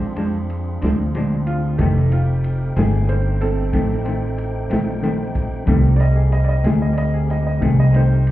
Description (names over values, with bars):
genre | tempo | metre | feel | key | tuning
slow blues | 62 BPM (dotted quarters) | 12/8 | straight | F mixolydian | A4 = 440 Hz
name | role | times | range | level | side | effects
clean electric guitar | accompaniment | 0.0-8.1 s | F2 to D4 | -22 LUFS | left 3 dB | tremolo
tonewheel organ | sustained chords | 0.0-8.3 s | E3 to G5 | -30 LUFS | right 1 dB | slow rotary speaker
upright bass | bass | 0.0-8.3 s | F1 to F2 | -18 LUFS | equal | none
vintage drum kit | drums | 0.2-8.3 s | kick drum, ride cymbal, snare drum | -26 LUFS | equal | none
bright upright piano | accompaniment | 1.5-8.3 s | G3 to Eb5 | -27 LUFS | right 4 dB | none
room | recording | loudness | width
little or no reverb | heard muffled through a wall, club reverb, EQ | -16 LUFS | side -15 dB against mid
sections
0.0-8.3 A section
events
upright piano solo 0.0-8.3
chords
0.0 Bb7 (rootless); 1.8 F7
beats
0.81 | 1.79 2.76 3.73 4.71 | 5.68 6.65 7.63